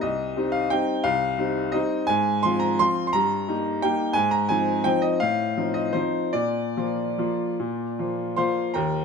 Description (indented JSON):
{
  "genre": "classical, piano waltz",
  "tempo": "139-182 BPM",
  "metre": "3/4",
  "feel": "rubato",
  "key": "unclear",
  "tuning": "A4 = 440 Hz",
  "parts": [
    { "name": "bright upright piano", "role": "solo", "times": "0.0-9.0 s", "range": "C2 to C6", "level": "-22 LUFS", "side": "equal", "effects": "none" }
  ],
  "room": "moderate large studio reverb, RT60 1.3 s",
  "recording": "close, detailed microphones",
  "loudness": "-22 LUFS",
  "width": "side -5 dB against mid",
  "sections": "0.0-8.8 A section",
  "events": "none",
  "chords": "0.0 Cm; 2.1 Fm/Ab; 3.1 Eb/G; 4.2 Fm7/Ab; 5.2 F7/A; 6.3 Bb",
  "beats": "| 0.01 0.35 0.70 | 1.04 1.38 1.74 | 2.08 2.43 2.79 | 3.13 3.47 3.82 | 4.17 4.51 4.86 | 5.21 5.57 5.95 | 6.34 6.76 7.19 | 7.60 7.99 8.39 | 8.77"
}